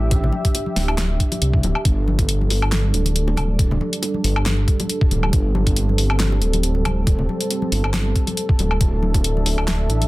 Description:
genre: deep dubstep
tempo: 138 BPM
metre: 4/4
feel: swing 55% on 16ths, half-time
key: unclear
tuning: A4 = 440 Hz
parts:
  - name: dark analog pad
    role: sustained chords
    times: 0.0-10.1 s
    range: G3 to E5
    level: -26 LUFS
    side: right 2 dB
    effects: chorus
  - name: dark detuned saw bass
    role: bass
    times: 0.0-10.1 s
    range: D1 to C2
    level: -20 LUFS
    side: equal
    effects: tube saturation
  - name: deep house drum kit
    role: drums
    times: 0.1-10.1 s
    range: handclaps, hi-hat, snare drum, woodblock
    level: -24 LUFS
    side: left 1 dB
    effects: none
  - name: electronic kick drum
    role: drums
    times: 0.1-9.2 s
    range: none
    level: -19 LUFS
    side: equal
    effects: none
  - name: bongos and congas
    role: percussion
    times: 0.1-10.1 s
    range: none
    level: -28 LUFS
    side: left 3 dB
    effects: dub echo
room: little or no reverb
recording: dense, heavily limited modern master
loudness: -17 LUFS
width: side -19 dB against mid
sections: 0.0-10.1 A section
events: none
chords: 0.0 Dsus4; 1.9 G5; 8.8 D5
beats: | 0.11 0.55 0.98 1.42 | 1.85 2.29 2.72 3.16 | 3.59 4.03 4.46 4.89 | 5.33 5.76 6.20 6.63 | 7.07 7.50 7.94 8.37 | 8.81 9.24 9.68

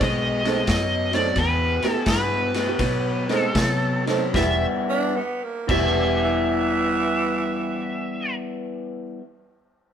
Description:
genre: electric blues shuffle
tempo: 74-91 BPM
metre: 4/4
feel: swing 67% on 8ths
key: E minor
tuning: A4 = 440 Hz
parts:
  - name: overdriven slide guitar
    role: melody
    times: 0.0-8.3 s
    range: B4 to E5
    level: -25 LUFS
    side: left 1 dB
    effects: none
  - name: dark upright piano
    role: accompaniment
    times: 0.0-9.0 s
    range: B3 to A4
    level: -28 LUFS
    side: right 6 dB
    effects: none
  - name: electric guitar through a small old amp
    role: riff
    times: 0.0-9.2 s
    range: E2 to E4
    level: -26 LUFS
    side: left 3 dB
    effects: spring reverb
  - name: vintage muted fingered electric bass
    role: bass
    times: 0.0-9.0 s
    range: E1 to C3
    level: -28 LUFS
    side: equal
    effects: none
  - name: raw garage drum kit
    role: drums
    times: 0.0-5.8 s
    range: crash cymbal, kick drum, ride cymbal, snare drum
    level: -28 LUFS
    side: equal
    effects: none
  - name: growling tenor saxophone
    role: second line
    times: 4.9-8.3 s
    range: E3 to D4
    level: -25 LUFS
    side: right 4 dB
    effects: none
room: moderate stone room reverb, RT60 1.3 s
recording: band playing live in one room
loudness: -20 LUFS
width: side -8 dB against mid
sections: 0.0-4.3 A section; 4.3-7.6 B section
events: slowing down 0.0-4.3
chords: 0.0 B7b9; 1.4 Em; 2.8 B7b9; 4.3 Em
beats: 0.01 0.68 | 1.37 2.07 2.80 3.56 | 4.35 5.16 5.96 6.77

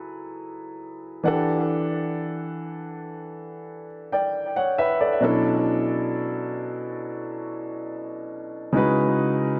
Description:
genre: R&B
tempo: 68 BPM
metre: 4/4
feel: straight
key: unclear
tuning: A4 = 440 Hz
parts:
  - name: warm concert grand piano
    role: solo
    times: 0.0-9.6 s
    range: B2 to G5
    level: -26 LUFS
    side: equal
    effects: tape echo
room: light reverb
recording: echo-heavy mix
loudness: -25 LUFS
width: mono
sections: 0.0-8.7 A section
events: none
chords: 0.0 F#m11; 1.2 Em11; 5.2 Bm11; 8.7 C#m11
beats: 0.80 | 1.68 2.56 3.45 4.33 | 5.21 6.09 6.98 7.86 | 8.74

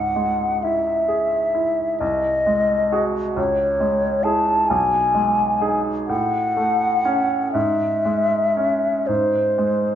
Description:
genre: classical, romantic duo for flute and grand piano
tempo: 39-45 BPM (dotted quarters)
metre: 6/8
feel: rubato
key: C# minor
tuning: A4 = 440 Hz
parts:
  - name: mellow hollow silver concert flute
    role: melody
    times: 0.0-9.9 s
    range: B#4 to A5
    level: -19 LUFS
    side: left 1 dB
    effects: none
  - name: bright baby grand piano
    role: accompaniment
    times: 0.0-9.9 s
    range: B1 to C#5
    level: -23 LUFS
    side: right 2 dB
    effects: none
room: wet recital hall reverb, RT60 1.6 s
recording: nothing above 7.6 kHz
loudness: -18 LUFS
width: side -10 dB against mid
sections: 0.0-9.9 A section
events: none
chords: 0.0 C#m; 2.0 G#7/B#; 3.4 C#m; 4.7 G#m/B; 6.1 F#m/A; 7.5 C#m/G#; 9.1 G#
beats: 0.63 | 2.01 3.37 | 4.71 6.10 | 7.55 9.08

